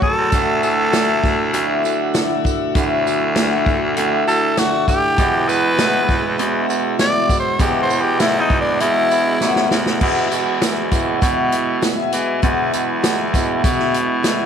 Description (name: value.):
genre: folk rock and heartland rock.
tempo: 99 BPM.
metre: 4/4.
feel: straight.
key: unclear.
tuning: A4 = 445 Hz.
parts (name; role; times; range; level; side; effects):
growling tenor saxophone; melody; 0.0-10.0 s; D4 to D5; -18 LUFS; equal; none.
picked twelve-string acoustic guitar; accompaniment; 0.0-14.5 s; E2 to F#4; -23 LUFS; left 12 dB; none.
bright tonewheel organ; sustained chords; 0.0-14.5 s; G#3 to E6; -30 LUFS; equal; slow rotary speaker, overdrive.
electric guitar through a small old amp; riff; 0.0-14.5 s; E2 to F#4; -23 LUFS; right 14 dB; wide subtle chorus.
raspy baritone saxophone; bass; 0.0-14.5 s; D2 to E3; -22 LUFS; equal; none.
vintage drum kit; drums; 0.0-14.4 s; crash cymbal, hi-hat, kick drum, snare drum; -20 LUFS; equal; none.
tambourine; percussion; 0.3-14.4 s; none; -32 LUFS; right 13 dB; none.
room: light reverb, small room ambience.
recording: 1960s-style stereo with parts hard left and right.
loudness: -15 LUFS.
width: side -8 dB against mid.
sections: 0.0-10.0 A section; 10.0-14.5 B section.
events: tenor saxophone solo 0.0-10.0; drum fill 9.4-10.0.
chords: 0.3 Dadd9; 5.2 Eadd9.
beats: | 0.33 0.94 1.54 2.15 | 2.76 3.36 3.97 4.58 | 5.18 5.79 6.39 7.00 | 7.60 8.21 8.81 9.42 | 10.02 10.63 11.23 11.84 | 12.44 13.04 13.65 14.25.